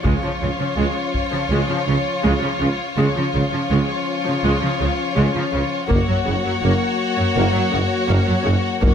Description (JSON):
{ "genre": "cinematic, epic orchestral film score", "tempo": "82 BPM", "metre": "4/4", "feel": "straight", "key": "unclear", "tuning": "A4 = 442 Hz", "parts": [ { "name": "rich symphonic violin section", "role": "second line", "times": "0.0-8.9 s", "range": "F4 to Gb4", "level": "-25 LUFS", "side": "left 2 dB", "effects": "none" }, { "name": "rich symphonic viola section", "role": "accompaniment", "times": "0.0-8.9 s", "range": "Db3 to Bb3", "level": "-24 LUFS", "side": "right 1 dB", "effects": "none" }, { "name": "mellow French horn section", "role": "sustained chords", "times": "0.0-8.9 s", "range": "F3 to Db4", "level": "-27 LUFS", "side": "left 6 dB", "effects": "none" }, { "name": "solo taiko drums", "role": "drums", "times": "0.0-1.5, 5.9-8.9 s", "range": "none", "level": "-21 LUFS", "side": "equal", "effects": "none" }, { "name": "rich symphonic violin section", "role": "melody", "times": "0.1-8.9 s", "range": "Db5", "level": "-27 LUFS", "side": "left 2 dB", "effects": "none" }, { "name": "clear symphonic cello section", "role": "bass", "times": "0.1-8.9 s", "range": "Gb2 to Db3", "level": "-24 LUFS", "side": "right 1 dB", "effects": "none" }, { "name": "rich symphonic double bass section", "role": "bass", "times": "0.1-8.9 s", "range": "Gb1 to Db2", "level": "-24 LUFS", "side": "right 2 dB", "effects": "none" }, { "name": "warm tuba", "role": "bass", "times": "0.1-8.9 s", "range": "Gb1 to Db2", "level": "-26 LUFS", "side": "right 3 dB", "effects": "none" } ], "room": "light reverb", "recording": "close, detailed microphones", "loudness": "-17 LUFS", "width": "side -8 dB against mid", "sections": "0.0-8.9 A section", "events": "build-up 0.0-8.9", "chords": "0.1 Db; 5.9 Gb", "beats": "| 0.05 0.78 1.51 2.25 | 2.98 3.71 4.44 5.17 | 5.90 6.64 7.37 8.10 | 8.83" }